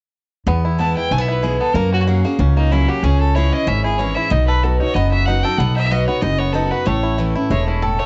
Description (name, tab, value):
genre	bluegrass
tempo	188 BPM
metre	4/4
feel	straight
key	E major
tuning	A4 = 442 Hz
part	bluegrass banjo	melody	0.5-8.1 s	A3 to A4	-27 LUFS	equal	cassette tape
part	picked steel-string acoustic guitar	accompaniment	0.5-8.1 s	E2 to G#4	-25 LUFS	equal	cassette tape
part	upright bass	bass	0.5-8.0 s	E1 to F#2	-20 LUFS	equal	none
part	bright fiddle	melody	0.8-8.1 s	D#4 to A5	-24 LUFS	equal	cassette tape
room	light reverb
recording	home recording on cassette, nothing above 8.0 kHz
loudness	-17 LUFS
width	mono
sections	0.5-8.1 A section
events	none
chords	0.5 E; 1.7 F#add9; 3.0 C#m; 4.3 B; 6.9 A